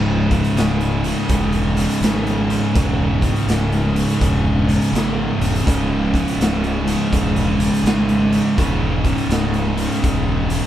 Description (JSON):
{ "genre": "stoner and doom metal", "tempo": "82 BPM", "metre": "4/4", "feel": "swing 64% on 8ths", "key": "C# minor", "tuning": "A4 = 441 Hz", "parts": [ { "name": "sludgy distorted guitar", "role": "riff", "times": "0.0-10.7 s", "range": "C#2 to C#3", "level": "-27 LUFS", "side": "left 1 dB", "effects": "overdrive" }, { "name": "thick fuzz guitar", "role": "riff", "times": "0.0-10.7 s", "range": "C#2 to C#3", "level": "-22 LUFS", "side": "left 4 dB", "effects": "distortion" }, { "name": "thick fuzz guitar", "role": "riff", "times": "0.0-10.7 s", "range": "C#2 to C#3", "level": "-20 LUFS", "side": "right 4 dB", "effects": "distortion" }, { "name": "fuzz fingered electric bass", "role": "bass", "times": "0.0-10.6 s", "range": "C#1 to G#1", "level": "-23 LUFS", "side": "equal", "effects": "overdrive, tube saturation" }, { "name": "raw garage drum kit", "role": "drums", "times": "0.3-10.7 s", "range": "hi-hat, kick drum, snare drum", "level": "-22 LUFS", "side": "equal", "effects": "none" } ], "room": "light reverb", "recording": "band playing live in one room", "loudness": "-16 LUFS", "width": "side -11 dB against mid", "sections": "0.0-10.7 A section", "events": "none", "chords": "0.0 C#m" }